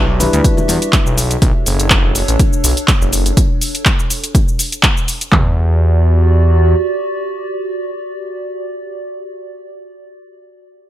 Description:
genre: deep house.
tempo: 123 BPM.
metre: 4/4.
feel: swing 54% on 16ths.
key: E dorian.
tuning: A4 = 440 Hz.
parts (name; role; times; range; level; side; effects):
warbly tape-like pad; sustained chords; 0.1-9.0 s; D4 to E5; -22 LUFS; right 2 dB; chorus, built-in reverb, sidechain pumping.
barky tine electric piano; stabs; 0.0-1.2 s; G3 to B4; -19 LUFS; left 2 dB; sidechain pumping, dub echo.
smooth synth bass; bass; 0.0-6.7 s; F#1 to E2; -13 LUFS; equal; sidechain pumping.
deep house drum kit; drums; 0.2-5.3 s; handclaps, hi-hat, shaker; -16 LUFS; equal; overdrive, small room ambience.
congas; percussion; 0.2-0.8 s; none; -23 LUFS; left 2 dB; none.
deep house drum kit; drums; 0.4-5.4 s; handclaps, kick drum, toms; -14 LUFS; equal; overdrive, small room ambience.
room: digital ambience.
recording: none.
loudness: -12 LUFS.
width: side -13 dB against mid.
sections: 0.0-5.3 A section; 5.3-9.2 B section.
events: drop 0.0-5.3.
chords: 0.0 Em7; 1.2 Bm7 (rootless); 5.3 Em7.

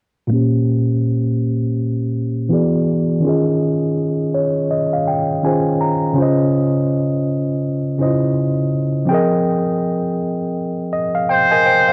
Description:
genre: lo-fi hip hop.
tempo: 82 BPM.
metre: 4/4.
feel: swing 60% on 16ths.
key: Bb dorian.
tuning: A4 = 440 Hz.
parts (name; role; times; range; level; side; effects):
tine electric piano; accompaniment; 0.3-11.9 s; Bb2 to Bb5; -18 LUFS; equal; cassette tape, low-pass filter.
trumpet with metal mute; melody; 11.3-11.9 s; C5; -15 LUFS; equal; low-pass filter, cassette tape.
room: light reverb, small room ambience.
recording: home recording on cassette.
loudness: -18 LUFS.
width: mono.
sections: 0.3-11.9 A section.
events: filter sweep on tine electric piano 0.3-11.9; tine electric piano fill 4.0-6.2, 10.6-11.9.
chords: 0.3 Bbm69; 2.5 E9; 3.2 Eb9sus4; 6.2 Dbmaj9; 9.1 Fm11.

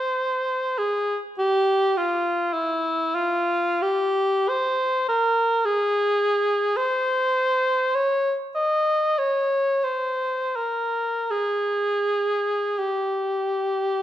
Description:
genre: classical, free, expressive piece for unaccompanied cor anglais.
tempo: 40-53 BPM.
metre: 4/4.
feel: rubato.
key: unclear.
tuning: A4 = 435 Hz.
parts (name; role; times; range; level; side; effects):
warm cor anglais; solo; 0.0-14.0 s; E4 to Eb5; -21 LUFS; equal; none.
room: moderate recital hall reverb, RT60 1.5 s.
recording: dark, warm production.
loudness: -21 LUFS.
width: side -12 dB against mid.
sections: 0.0-14.0 A section.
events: none.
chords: none.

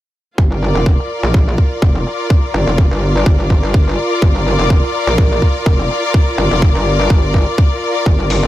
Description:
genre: bass house.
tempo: 125 BPM.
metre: 4/4.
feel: swing 54% on 16ths.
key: G minor.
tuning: A4 = 440 Hz.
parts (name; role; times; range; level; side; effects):
metallic wobble bass; bass; 0.4-8.5 s; F1 to Bb1; -16 LUFS; equal; chorus, tube saturation, sidechain pumping.
electronic kick drum; drums; 0.4-8.2 s; none; -11 LUFS; equal; small room reverb.
rich studio string section; texture; 0.4-8.5 s; F4 to D5; -18 LUFS; left 1 dB; sidechain pumping.
electronic hi-hat; drums; 8.3-8.4 s; none; -21 LUFS; left 3 dB; low-pass filter on hats, small room reverb.
room: digital ambience.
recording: none.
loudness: -11 LUFS.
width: side -14 dB against mid.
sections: 0.4-8.5 A section.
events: none.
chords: 0.4 Gm.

